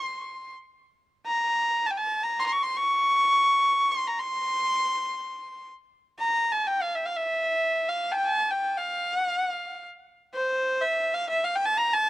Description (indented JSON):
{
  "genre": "Turkish makam ensemble",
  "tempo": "free time",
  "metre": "none",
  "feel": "none",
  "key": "C makam hicaz",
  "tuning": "A4 = 440 Hz",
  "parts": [
    { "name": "bright kamancheh", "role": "solo", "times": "0.0-12.1 s", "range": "C5 to Db6", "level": "-23 LUFS", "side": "equal", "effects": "slapback echo" }
  ],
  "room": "little or no reverb",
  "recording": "recorded outdoors, with no room sound",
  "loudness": "-23 LUFS",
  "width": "side -16 dB against mid",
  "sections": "0.0-12.1 A section",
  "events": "none",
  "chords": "none"
}